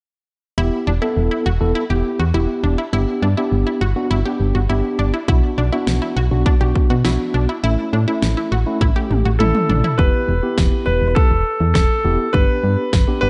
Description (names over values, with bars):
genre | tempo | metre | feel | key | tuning
synth-pop | 102 BPM | 4/4 | straight | E minor | A4 = 440 Hz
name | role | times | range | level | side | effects
mellow tine electric piano | accompaniment | 0.6-13.3 s | A3 to A4 | -24 LUFS | equal | none
unison pluck | arpeggios | 0.6-9.9 s | D4 to G4 | -28 LUFS | equal | analog delay
solid FM bass | bass | 0.6-13.3 s | E1 to B2 | -20 LUFS | equal | none
pop drum kit | drums | 5.3-13.1 s | kick drum, snare drum, toms | -20 LUFS | equal | none
clear concert grand piano | melody | 9.4-13.3 s | A4 to B4 | -22 LUFS | equal | analog delay
room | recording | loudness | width
light reverb | nothing above 10.6 kHz | -18 LUFS | mono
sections
0.6-10.0 A section; 10.0-13.3 B section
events
drum fill 8.8-10.0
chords
0.6 Em; 2.9 G; 5.3 Bm; 7.6 A; 10.0 Em; 12.3 G